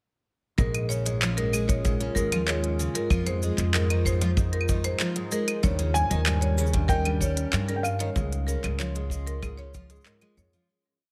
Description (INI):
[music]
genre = folktronica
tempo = 95 BPM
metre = 4/4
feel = straight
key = Bb dorian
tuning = A4 = 440 Hz
[part]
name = marimba with hard mallets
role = second line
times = 0.6-10.5 s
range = Bb4 to Db5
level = -36 LUFS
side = equal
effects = tape echo
[part]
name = warbly tape-like pad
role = sustained chords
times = 1.0-10.7 s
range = G3 to C6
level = -38 LUFS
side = equal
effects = chorus, built-in reverb, vintage 12-bit sampler grit
[part]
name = picked twelve-string acoustic guitar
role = arpeggios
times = 0.6-10.7 s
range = G2 to Ab3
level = -35 LUFS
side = equal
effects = digital delay
[part]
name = upright bass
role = bass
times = 0.6-10.6 s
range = Bb1 to G2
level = -30 LUFS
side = equal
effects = none
[part]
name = kick drum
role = drums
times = 0.6-9.9 s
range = none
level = -30 LUFS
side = equal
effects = none
[part]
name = organic electronic drum kit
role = drums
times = 0.6-10.7 s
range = claves, handclaps, hi-hat, shaker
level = -33 LUFS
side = equal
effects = none
[part]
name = felt-muted upright piano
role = melody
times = 5.9-10.0 s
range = F5 to Ab5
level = -33 LUFS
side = equal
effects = none
[sound]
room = light reverb, small room ambience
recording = none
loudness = -26 LUFS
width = mono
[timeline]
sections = 0.6-10.7 groove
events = fade-out 7.3-10.7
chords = 0.6 Bbm7; 3.1 Fm7; 5.6 Eb7; 8.2 Dbmaj7